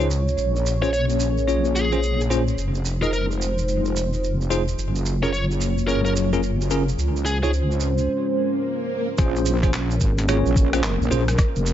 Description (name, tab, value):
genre	glitch hop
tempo	109 BPM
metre	4/4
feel	swing 62% on 16ths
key	Bb minor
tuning	A4 = 441 Hz
part	dark analog pad	sustained chords	0.0-11.7 s	Gb3 to Db5	-26 LUFS	equal	chorus, phaser, sidechain pumping
part	bell-like tine electric piano	stabs	0.0-11.2 s	Db4 to Eb5	-26 LUFS	equal	fast stereo tremolo, vintage 12-bit sampler grit, sidechain pumping, dub echo
part	wobble bass	bass	0.0-11.7 s	F1 to Db2	-22 LUFS	equal	chorus, tube saturation
part	maracas	percussion	0.0-11.7 s	none	-34 LUFS	right 6 dB	none
part	smooth overdriven lead guitar	melody	0.8-7.5 s	Ab4 to Db5	-30 LUFS	left 1 dB	dub echo
part	swell	sound effects	8.3-9.2 s	none	-30 LUFS	left 1 dB	none
part	boom bap sampler-style drum kit	drums	9.2-11.5 s	handclaps, hi-hat, rim click	-28 LUFS	left 1 dB	low-pass filter on hats, low-pass filter on snare
part	electronic kick drum	drums	9.2-11.5 s	none	-19 LUFS	equal	none
room	light reverb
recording	nothing above 7.6 kHz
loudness	-19 LUFS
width	side -11 dB against mid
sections	0.0-9.2 A section; 9.2-11.7 B section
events	swell 8.3-9.2; drop 9.2-11.7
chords	0.4 Bbm7; 2.6 Fm7; 4.8 Gbmaj7; 7.0 Dbmaj7; 9.2 Bbm9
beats	| 0.38 0.93 1.48 2.03 | 2.58 3.13 3.68 4.23 | 4.78 5.33 5.88 6.43 | 6.98 7.53 8.08 8.63 | 9.18 9.73 10.29 10.84 | 11.39